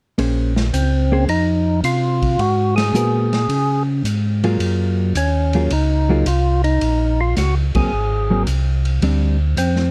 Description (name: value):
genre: soul jazz organ trio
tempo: 109 BPM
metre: 4/4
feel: swing 69% on 8ths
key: Bb minor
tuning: A4 = 441 Hz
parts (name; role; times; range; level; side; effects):
- hollow-body jazz guitar; accompaniment; 0.2-9.4 s; Gb3 to C5; -22 LUFS; equal; none
- mellow tonewheel organ; bass; 0.2-9.9 s; Ab1 to Db3; -20 LUFS; equal; slow rotary speaker
- swinging big-band drum kit; drums; 0.2-9.9 s; hi-hat, kick drum, ride cymbal, snare drum; -29 LUFS; equal; none
- percussive tonewheel organ; melody; 0.7-9.9 s; C4 to Ab4; -22 LUFS; equal; slow rotary speaker, overdrive
room: little or no reverb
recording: close, detailed microphones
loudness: -18 LUFS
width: mono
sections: 0.2-9.9 A section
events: band accent 7.6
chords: 0.2 Bbm9; 2.4 Abm9; 3.5 Db; 4.6 Gbmaj9; 6.8 Bbm11; 7.9 Ab9; 9.0 Dm7